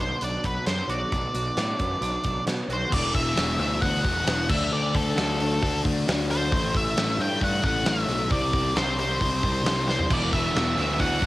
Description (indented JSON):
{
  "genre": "quiet-loud alternative rock",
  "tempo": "134 BPM",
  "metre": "4/4",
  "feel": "straight",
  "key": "E minor",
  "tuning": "A4 = 439 Hz",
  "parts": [
    { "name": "octave-fuzz lead guitar", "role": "melody", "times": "0.0-11.3 s", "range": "A4 to G5", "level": "-28 LUFS", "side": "equal", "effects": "distortion, cassette tape" },
    { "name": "twangy electric guitar", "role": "arpeggios", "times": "0.0-2.9 s", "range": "B2 to F#4", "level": "-35 LUFS", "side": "right 3 dB", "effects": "analog chorus, cassette tape, analog delay" },
    { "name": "fuzz picked electric bass", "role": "bass", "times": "0.0-11.3 s", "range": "E1 to B2", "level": "-28 LUFS", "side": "equal", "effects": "overdrive" },
    { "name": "big rock drum kit", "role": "drums", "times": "0.2-11.3 s", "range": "crash cymbal, hi-hat, kick drum, snare drum, splash cymbal, toms", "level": "-27 LUFS", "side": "equal", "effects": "cassette tape" },
    { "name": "overdriven electric guitar", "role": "riff", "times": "2.9-11.3 s", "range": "E2 to D4", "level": "-30 LUFS", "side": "left 5 dB", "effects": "cassette tape" },
    { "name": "distorted electric guitar", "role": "riff", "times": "10.1-11.3 s", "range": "E2 to E3", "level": "-29 LUFS", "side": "right 6 dB", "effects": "overdrive, cassette tape" }
  ],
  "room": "studio ambience",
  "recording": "home recording on cassette",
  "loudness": "-22 LUFS",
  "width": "side -17 dB against mid",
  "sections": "0.0-2.9 A section; 2.9-11.3 B section",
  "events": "drum fill 9.9",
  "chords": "0.0 Bm; 2.9 Esus2; 4.5 D5; 6.5 A5; 8.3 Csus2; 10.1 Esus2"
}